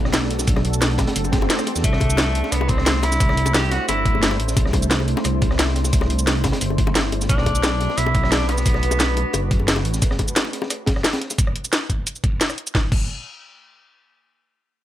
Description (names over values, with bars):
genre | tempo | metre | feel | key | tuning
liquid drum and bass | 176 BPM | 4/4 | straight | unclear | A4 = 440 Hz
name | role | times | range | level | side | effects
glassy FM pad | sustained chords | 0.0-10.0 s | A3 to C5 | -28 LUFS | right 1 dB | ensemble chorus, built-in reverb
dark detuned saw bass | bass | 0.0-10.0 s | F#1 to E2 | -22 LUFS | equal | none
crunchy breakbeat drum kit | drums | 0.1-11.4 s | hi-hat, snare drum | -28 LUFS | equal | high-pass filter on hats, high-pass filter on snare, high-pass filter on room
drum and bass drum kit | drums | 0.1-13.0 s | cabasa, crash cymbal, hi-hat, rim click, snare drum | -22 LUFS | equal | none
bongos | percussion | 0.1-11.4 s | none | -30 LUFS | left 6 dB | none
electronic kick drum | drums | 0.5-13.0 s | none | -21 LUFS | equal | overdrive
swell | sound effects | 1.3-1.8 s | none | -30 LUFS | equal | none
clear tenor saxophone | melody | 1.8-4.4, 7.3-9.5 s | A3 to G4 | -24 LUFS | equal | digital delay
room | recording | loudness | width
small room ambience | none | -17 LUFS | side -13 dB against mid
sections
0.0-12.7 A section; 12.7-14.8 B section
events
drop 0.0-12.7; swell 1.3-1.8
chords
0.0 Bm7; 1.8 C69; 7.3 Bm7; 12.7 N.C.